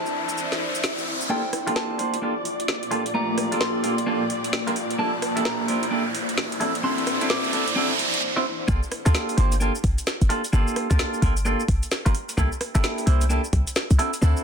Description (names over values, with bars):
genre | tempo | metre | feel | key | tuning
UK garage, two-step garage | 130 BPM | 4/4 | swing 63% on 16ths | G dorian | A4 = 440 Hz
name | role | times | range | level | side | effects
soft synth bell | melody | 0.0-7.5 s | G5 to D6 | -32 LUFS | left 1 dB | chorus, dub echo
soft string machine | sustained chords | 0.0-8.2 s | D5 to E5 | -34 LUFS | equal | ensemble chorus, sidechain pumping
riser | sound effects | 0.0-8.2 s | none | -29 LUFS | right 2 dB | none
granular cloud pad | texture | 0.0-8.2 s | Bb3 to A5 | -30 LUFS | equal | built-in reverb, sidechain pumping
garage drum kit | drums | 0.1-14.4 s | hi-hat, rim click, shaker, snare drum | -28 LUFS | equal | overdrive
clean electric guitar | stabs | 1.3-14.4 s | A3 to C5 | -26 LUFS | right 1 dB | low-pass filter, tape echo
short 808-style bass | bass | 8.7-14.3 s | G1 to D2 | -20 LUFS | equal | none
electronic kick drum | drums | 8.7-13.6 s | none | -24 LUFS | equal | overdrive
room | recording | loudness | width
light reverb, digital ambience | dense, heavily limited modern master | -21 LUFS | side -6 dB against mid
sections
0.0-1.3 A section; 1.3-8.7 B section; 8.7-14.4 C section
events
riser 0.0-1.3, 1.3-8.2; build-up 1.3-8.7; filter sweep on clean electric guitar 1.3-8.7; break 8.2-8.7; drop 8.7-14.4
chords
0.0 D9; 1.3 Gm7; 4.8 C13; 6.6 D9; 8.7 Gm7; 12.1 C13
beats
0.38 0.84 | 1.30 1.76 2.22 2.68 | 3.15 3.61 4.07 4.53 | 4.99 5.45 5.92 6.38 | 6.84 7.30 7.76 8.22 | 8.68 9.15 9.61 10.07 | 10.53 10.99 11.45 11.91 | 12.38 12.84 13.30 13.76 | 14.22